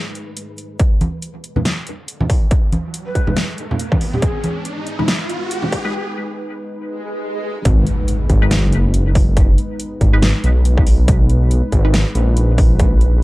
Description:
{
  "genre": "deep dubstep",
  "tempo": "140 BPM",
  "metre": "4/4",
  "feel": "swing 57% on 16ths, half-time",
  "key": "G# minor",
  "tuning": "A4 = 440 Hz",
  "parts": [
    { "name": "dark analog pad", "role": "sustained chords", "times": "0.0-13.2 s", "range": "G#3 to B4", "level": "-28 LUFS", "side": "equal", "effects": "chorus" },
    { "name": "flickering grainy texture", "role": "texture", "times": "0.0-0.8 s", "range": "G#3 to B4", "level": "-42 LUFS", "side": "left 2 dB", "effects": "built-in reverb" },
    { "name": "dubstep drum kit", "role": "drums", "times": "0.2-13.1 s", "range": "hi-hat, snare drum", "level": "-22 LUFS", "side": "equal", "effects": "none" },
    { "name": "electronic kick drum", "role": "drums", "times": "0.8-12.9 s", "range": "none", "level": "-14 LUFS", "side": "equal", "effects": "distortion" },
    { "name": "riser, swell and impact", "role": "sound effects", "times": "2.4-9.4 s", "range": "none", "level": "-24 LUFS", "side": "equal", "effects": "none" },
    { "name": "congas", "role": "percussion", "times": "1.0-5.7 s", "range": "none", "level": "-23 LUFS", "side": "right 1 dB", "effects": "none" },
    { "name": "filtered dub chord stab", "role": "stabs", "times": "1.6-12.0 s", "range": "G#3 to B4", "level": "-26 LUFS", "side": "left 1 dB", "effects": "phaser, dub echo" },
    { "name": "mellow hollow shakuhachi", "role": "melody", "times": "3.1-4.6 s", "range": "G#4 to B4", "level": "-30 LUFS", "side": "equal", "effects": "low-pass filter, dub echo" },
    { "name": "dark detuned saw bass", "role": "bass", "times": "7.7-13.2 s", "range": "F#1 to B1", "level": "-14 LUFS", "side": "equal", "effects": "none" }
  ],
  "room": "little or no reverb",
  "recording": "dry, gritty hardware recording, cassette tape, high-pass filter",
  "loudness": "-14 LUFS",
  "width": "side -19 dB against mid",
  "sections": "0.8-7.7 A section; 7.7-13.2 B section",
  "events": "build-up 0.8-7.7; filter sweep on synth stab 0.8-7.7; filter sweep on analog synth pad 0.8-7.7; riser 2.4-5.9; break 5.9-7.7; swell 6.9-7.7; drop 7.7-13.2; impact 7.7-9.4",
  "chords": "0.0 G#m",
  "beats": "0.37 | 0.80 1.23 1.65 2.08 | 2.51 2.94 3.37 3.80 | 4.22 4.65 5.08 5.51 | 5.94 6.37 6.80 7.22 | 7.65 8.08 8.51 8.94 | 9.37 9.80 10.22 10.65 | 11.08 11.51 11.94 12.37 | 12.80 13.22"
}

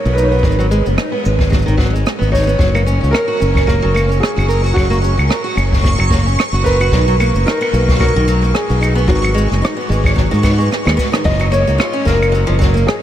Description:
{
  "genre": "folktronica",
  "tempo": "111 BPM",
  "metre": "4/4",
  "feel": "swing 56% on 16ths",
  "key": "F# major",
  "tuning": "A4 = 439 Hz",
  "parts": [
    { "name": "felt-muted upright piano", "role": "melody", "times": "0.0-12.9 s", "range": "F#4 to D#5", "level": "-20 LUFS", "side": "equal", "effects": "tape echo" },
    { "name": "picked steel-string acoustic guitar", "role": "arpeggios", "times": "0.1-12.9 s", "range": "D#3 to A#4", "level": "-20 LUFS", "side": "equal", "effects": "low-pass filter, tape echo" },
    { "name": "modern bright fingered electric bass", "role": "bass", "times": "0.1-12.8 s", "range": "F#1 to G#2", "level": "-15 LUFS", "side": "equal", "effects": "none" },
    { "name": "cabasa, rim click and claves", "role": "drums", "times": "0.1-13.0 s", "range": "none", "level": "-22 LUFS", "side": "right 1 dB", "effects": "none" },
    { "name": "kick drum", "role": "drums", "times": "0.4-12.7 s", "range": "none", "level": "-18 LUFS", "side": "equal", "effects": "none" },
    { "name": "backwards swelling texture", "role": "texture", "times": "3.0-11.3 s", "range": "C#6", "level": "-26 LUFS", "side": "right 1 dB", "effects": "built-in reverb, ensemble chorus" }
  ],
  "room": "moderate huge ambient reverb, RT60 8.1 s",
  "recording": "dreamy mix soaked in reverb",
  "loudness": "-12 LUFS",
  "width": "side -11 dB against mid",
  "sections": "0.0-11.2 A section; 11.2-13.0 B section",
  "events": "drum fill 10.7-11.2",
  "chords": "0.4 G#m7; 2.6 F#; 6.9 Bmaj7; 9.1 G#m7; 11.2 F#maj7",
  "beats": "| 0.44 0.98 1.52 2.06 | 2.60 3.14 3.68 4.22 | 4.76 5.30 5.84 6.38 | 6.92 7.46 8.01 8.55 | 9.09 9.63 10.17 10.71 | 11.25 11.79 12.33 12.87"
}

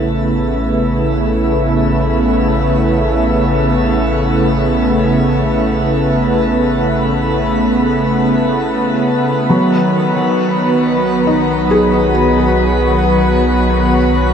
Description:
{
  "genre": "ambient",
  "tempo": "free time",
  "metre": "none",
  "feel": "none",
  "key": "A lydian",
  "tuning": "A4 = 440 Hz",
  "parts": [
    { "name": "warm analog pad", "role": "sustained chords", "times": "0.0-14.3 s", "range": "C#3 to B4", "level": "-12 LUFS", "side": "right 1 dB", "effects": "chorus, tremolo" },
    { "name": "deep rumbling drone", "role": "bass", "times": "0.0-14.3 s", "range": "A1 to B1", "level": "-20 LUFS", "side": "left 1 dB", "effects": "built-in reverb" },
    { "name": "felt-muted upright piano", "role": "arpeggios", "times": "9.5-14.3 s", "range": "F#3 to G#4", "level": "-18 LUFS", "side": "left 1 dB", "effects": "ping-pong delay" }
  ],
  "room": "wet shimmer reverb, RT60 7.3 s",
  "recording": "cassette tape",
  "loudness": "-12 LUFS",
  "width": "side -7 dB against mid",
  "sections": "0.0-14.3 A section",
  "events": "none",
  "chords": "0.0 Aadd9; 9.5 B",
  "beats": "free time"
}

